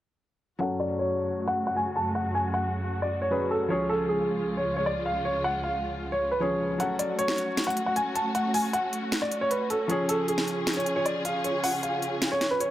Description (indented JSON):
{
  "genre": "hip hop, trap",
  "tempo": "155 BPM",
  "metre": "4/4",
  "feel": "half-time",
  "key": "F# harmonic minor",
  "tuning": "A4 = 440 Hz",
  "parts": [
    { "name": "dark baby grand piano", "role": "melody", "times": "0.6-12.7 s", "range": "G#4 to A5", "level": "-27 LUFS", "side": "equal", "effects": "low-pass filter, dub echo" },
    { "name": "felt-muted upright piano", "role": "accompaniment", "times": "0.6-12.7 s", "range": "E#3 to A4", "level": "-33 LUFS", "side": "left 2 dB", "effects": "low-pass filter, dub echo" },
    { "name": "dark symphonic string section", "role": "sustained chords", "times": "0.6-12.7 s", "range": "C#2 to G#4", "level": "-32 LUFS", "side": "equal", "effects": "low-pass filter" },
    { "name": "trap drum kit", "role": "drums", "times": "6.8-12.7 s", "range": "hi-hat, snare drum", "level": "-30 LUFS", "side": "equal", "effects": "none" }
  ],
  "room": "light reverb, small room ambience",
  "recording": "echo-heavy mix",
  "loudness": "-25 LUFS",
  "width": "side -13 dB against mid",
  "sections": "0.6-6.8 A section; 6.8-12.7 B section",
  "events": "filter sweep 0.6-6.8; kick muted 6.8-12.7",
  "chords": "0.6 F#m; 3.7 C#; 6.8 F#m; 9.9 C#",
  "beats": "| 0.60 0.99 1.38 1.77 | 2.15 2.54 2.93 3.31 | 3.70 4.09 4.48 4.86 | 5.25 5.64 6.02 6.41 | 6.80 7.19 7.57 7.96 | 8.35 8.73 9.12 9.51 | 9.89 10.28 10.67 11.06 | 11.44 11.83 12.22 12.61"
}